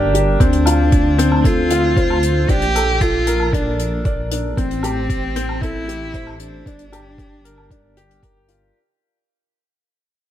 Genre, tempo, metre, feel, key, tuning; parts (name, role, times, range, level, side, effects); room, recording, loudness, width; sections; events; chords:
piano and strings electronica; 115 BPM; 4/4; straight; A4 = 439 Hz
dark cello; melody; 0.0-8.2 s; Bb3 to G4; -21 LUFS; right 1 dB
dark upright piano; riff; 0.0-8.8 s; C4 to D5; -21 LUFS; left 2 dB; ping-pong delay
dark detuned saw bass; bass; 0.0-8.7 s; G1 to D2; -20 LUFS; equal; sidechain pumping
hi-hat and woodblock; drums; 0.1-8.6 s; -27 LUFS; equal
electronic kick drum; drums; 0.4-8.3 s; -18 LUFS; equal
light reverb, small room ambience; -15 LUFS; side -12 dB against mid
0.0-8.8 A section
drop 0.0-8.8; fade-out 0.4-8.8
0.4 Dm7; 2.5 Bbmaj7; 4.6 Am7; 6.7 Gm7